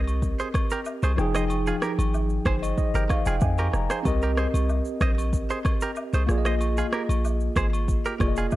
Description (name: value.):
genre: afrobeats.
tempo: 94 BPM.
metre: 4/4.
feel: straight.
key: C minor.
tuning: A4 = 440 Hz.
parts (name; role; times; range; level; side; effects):
tine electric piano; accompaniment; 0.0-8.6 s; F3 to Bb5; -28 LUFS; equal; medium stereo tremolo.
warm 808-style bass; bass; 0.0-8.5 s; F1 to F2; -25 LUFS; equal; none.
afro-pop drum kit; drums; 0.1-8.6 s; kick drum, rim click, shaker; -27 LUFS; equal; none.
agogo bells and woodblock; percussion; 0.1-8.6 s; none; -37 LUFS; left 2 dB; none.
direct-recorded clean electric guitar; riff; 0.4-8.5 s; F4 to Eb5; -32 LUFS; right 4 dB; slapback echo.
room: digital ambience.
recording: dark, warm production.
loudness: -22 LUFS.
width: side -16 dB against mid.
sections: 0.0-8.6 A section.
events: tine electric piano fill 2.1-4.1.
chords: 0.0 Cm7; 1.2 Fm9; 4.1 Cm7; 6.3 Bb7sus4.